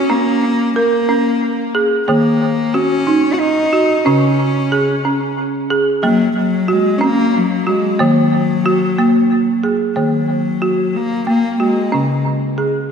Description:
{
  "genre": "world meditative",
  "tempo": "92 BPM",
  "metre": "3/4",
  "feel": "straight",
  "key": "Eb minor pentatonic",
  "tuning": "A4 = 440 Hz",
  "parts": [
    { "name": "warm cello", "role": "melody", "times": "0.0-12.2 s", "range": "Gb3 to Gb4", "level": "-18 LUFS", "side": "left 2 dB", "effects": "diffuse ambient delay" },
    { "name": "folk marimba with medium hard mallets", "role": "arpeggios", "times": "0.0-12.9 s", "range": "Db3 to Bb4", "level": "-15 LUFS", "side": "right 1 dB", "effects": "diffuse ambient delay" }
  ],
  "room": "wet lush hall reverb, RT60 2.5 s",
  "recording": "dreamy mix soaked in reverb",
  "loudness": "-13 LUFS",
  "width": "side -6 dB against mid",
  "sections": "0.0-10.0 A section; 10.0-12.9 B section",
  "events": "none",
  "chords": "0.0 Gb (rootless); 2.1 Ebm; 4.1 Db5; 6.0 Gb; 8.0 Ebm; 11.9 Db5",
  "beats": "| 0.11 0.77 1.43 | 2.09 2.75 3.41 | 4.07 4.72 5.38 | 6.04 6.69 7.35 | 8.00 8.66 9.31 | 9.97 10.62 11.28 | 11.94 12.59"
}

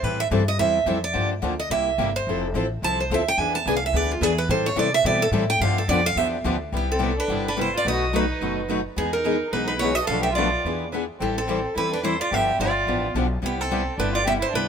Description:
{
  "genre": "acoustic string swing (jazz manouche)",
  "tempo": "215 BPM",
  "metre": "4/4",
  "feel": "swing 57% on 8ths",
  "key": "C major",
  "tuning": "A4 = 441 Hz",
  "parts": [
    { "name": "picked steel-string acoustic guitar", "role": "melody", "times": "0.0-14.7 s", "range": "F4 to A5", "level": "-24 LUFS", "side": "right 3 dB", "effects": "none" },
    { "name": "picked steel-string acoustic guitar", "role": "accompaniment", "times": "0.0-14.7 s", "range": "B2 to A4", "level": "-27 LUFS", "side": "left 6 dB", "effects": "none" },
    { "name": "picked steel-string acoustic guitar", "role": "accompaniment", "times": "0.0-14.7 s", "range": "B2 to B4", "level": "-31 LUFS", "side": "right 4 dB", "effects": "none" },
    { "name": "upright bass", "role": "bass", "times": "0.0-14.7 s", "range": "F1 to C3", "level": "-28 LUFS", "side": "equal", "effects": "none" },
    { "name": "rich violin", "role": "second line", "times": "6.7-14.7 s", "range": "B3 to A4", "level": "-28 LUFS", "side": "right 1 dB", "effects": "none" }
  ],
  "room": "light reverb",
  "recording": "minimal, uncompressed stereo recording",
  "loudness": "-20 LUFS",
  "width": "side -7 dB against mid",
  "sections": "0.0-6.7 A section; 6.7-14.7 B section",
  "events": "steel-string acoustic guitar solo 0.0-6.7",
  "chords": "0.0 Am7; 1.1 Gm7; 1.7 C7; 2.3 Fmaj7; 3.4 E7; 4.5 Am9; 5.6 G7; 6.7 Cmaj9; 7.9 B7; 9.0 Emaj7; 10.1 Bm7b5; 10.6 E7; 11.2 Am7; 12.3 G7; 13.4 Cmaj9",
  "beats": "| 0.03 0.31 0.59 0.87 | 1.15 1.43 1.71 1.98 | 2.26 2.54 2.82 3.10 | 3.38 3.66 3.94 4.22 | 4.50 4.78 5.05 5.33 | 5.61 5.89 6.17 6.45 | 6.73 7.01 7.29 7.57 | 7.85 8.13 8.41 8.69 | 8.97 9.25 9.53 9.81 | 10.09 10.37 10.65 10.92 | 11.20 11.48 11.76 12.04 | 12.32 12.59 12.87 13.15 | 13.43 13.71 13.98 14.26 | 14.54"
}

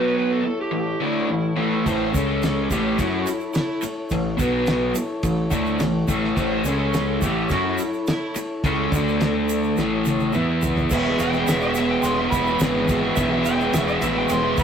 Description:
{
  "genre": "garage rock duo or trio",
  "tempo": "106 BPM",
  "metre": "4/4",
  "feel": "straight",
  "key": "A major",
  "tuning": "A4 = 439 Hz",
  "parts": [
    { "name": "overdriven slide guitar", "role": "melody", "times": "0.0-14.6 s", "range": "E4 to C6", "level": "-27 LUFS", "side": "right 1 dB", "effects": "none" },
    { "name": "combo organ", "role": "sustained chords", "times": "0.0-14.6 s", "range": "B3 to G#5", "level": "-28 LUFS", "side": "left 1 dB", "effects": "none" },
    { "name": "raw garage guitar", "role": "riff", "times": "0.0-14.6 s", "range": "E2 to F#4", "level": "-22 LUFS", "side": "equal", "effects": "overdrive" },
    { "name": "woody fretless electric bass", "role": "bass", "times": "1.9-14.6 s", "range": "E1 to F#2", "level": "-30 LUFS", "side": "right 1 dB", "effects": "none" },
    { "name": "cloth-damped thuddy drum kit", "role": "drums", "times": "1.9-14.6 s", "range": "crash cymbal, kick drum, ride cymbal, snare drum, toms", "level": "-27 LUFS", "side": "equal", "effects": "none" },
    { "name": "egg shaker", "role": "percussion", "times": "1.9-14.6 s", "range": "none", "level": "-38 LUFS", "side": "right 5 dB", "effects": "none" }
  ],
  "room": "moderate stone room reverb, RT60 1.0 s",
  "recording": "rough rehearsal-room recording, tube saturation",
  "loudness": "-19 LUFS",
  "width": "side -8 dB against mid",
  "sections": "0.0-10.9 A section; 10.9-14.6 B section",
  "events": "drum fill 9.8-10.9",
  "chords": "0.4 A; 2.1 C#5; 2.7 A; 4.4 B5; 5.0 A; 6.7 C#5; 7.2 A; 8.9 D5; 9.8 A; 10.3 E5; 10.9 E",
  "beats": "0.16 0.72 1.28 | 1.85 2.41 2.98 3.54 | 4.11 4.67 5.24 5.80 | 6.37 6.94 7.50 8.07 | 8.64 9.21 9.77 10.34 | 10.90 11.47 12.03 12.60 | 13.16 13.73 14.29"
}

